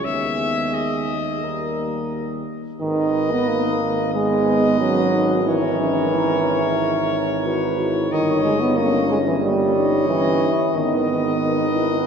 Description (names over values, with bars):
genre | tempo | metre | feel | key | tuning
classical, brass quintet | 91 BPM | 4/4 | straight | G# minor | A4 = 439 Hz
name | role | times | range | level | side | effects
clear trumpet | melody | 0.0-12.1 s | C#5 to E5 | -27 LUFS | left 5 dB | none
mellow flugelhorn | second line | 0.0-12.1 s | G#4 to C#5 | -28 LUFS | right 4 dB | none
clear euphonium | accompaniment | 0.0-12.1 s | D#3 to B3 | -21 LUFS | right 1 dB | none
dark French horn | accompaniment | 0.0-12.1 s | A#3 to F#4 | -25 LUFS | left 2 dB | none
bright bass trombone | bass | 0.0-12.1 s | G1 to D#2 | -26 LUFS | right 2 dB | none
room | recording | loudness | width
wet church reverb, RT60 3.5 s | none | -18 LUFS | side -6 dB against mid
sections
0.0-2.8 A section; 2.8-12.1 B section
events
none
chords
0.0 G#m/D#; 1.4 D#; 2.8 G#m; 5.5 A#m7b5/G#; 8.1 D#7/G; 10.7 G#m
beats
| 0.05 0.74 1.43 2.12 | 2.80 3.47 4.13 4.80 | 5.46 6.12 6.79 7.45 | 8.11 8.77 9.43 10.09 | 10.75 11.40 12.06